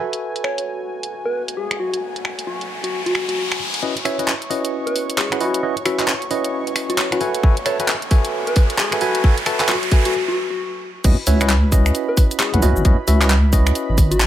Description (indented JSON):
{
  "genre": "UK garage, two-step garage",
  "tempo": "133 BPM",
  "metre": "4/4",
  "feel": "swing 62% on 16ths",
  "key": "C# minor",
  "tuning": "A4 = 439 Hz",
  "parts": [
    { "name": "soft struck synth lead", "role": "melody", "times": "0.0-14.3 s", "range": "F#4 to C#5", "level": "-25 LUFS", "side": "left 1 dB", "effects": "chorus, cassette tape, tape echo" },
    { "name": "warm analog pad", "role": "sustained chords", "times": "0.0-14.3 s", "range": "F#4 to C#6", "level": "-32 LUFS", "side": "equal", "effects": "chorus, sidechain pumping" },
    { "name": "tine electric piano", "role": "stabs", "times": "0.0-14.3 s", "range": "C#4 to A5", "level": "-23 LUFS", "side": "right 1 dB", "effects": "medium stereo tremolo, tape echo" },
    { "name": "garage drum kit", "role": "drums", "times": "0.1-14.3 s", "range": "cabasa, crash cymbal, finger snaps, handclaps, hi-hat", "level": "-22 LUFS", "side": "equal", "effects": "overdrive, low-pass filter on hats, low-pass filter on snare, low-pass filter on cymbals, low-pass filter on perc" },
    { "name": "riser", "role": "sound effects", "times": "1.4-10.1 s", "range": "none", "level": "-28 LUFS", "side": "right 1 dB", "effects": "none" },
    { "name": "electronic kick drum", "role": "drums", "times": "7.4-14.1 s", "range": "none", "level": "-14 LUFS", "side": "equal", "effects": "overdrive" },
    { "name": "deep soft wobble bass", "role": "bass", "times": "11.0-14.3 s", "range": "G#1 to C#2", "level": "-16 LUFS", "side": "equal", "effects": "chorus" }
  ],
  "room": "light reverb, digital ambience",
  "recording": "none",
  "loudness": "-16 LUFS",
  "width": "side -12 dB against mid",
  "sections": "0.0-3.8 A section; 3.8-11.0 B section; 11.0-14.3 C section",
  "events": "riser 1.4-3.8, 3.8-10.1; build-up 3.8-11.0; break 10.1-11.0; drop 11.0-14.3",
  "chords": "0.0 F#m11; 3.8 C#m11; 7.2 F#m11; 11.0 C#m11"
}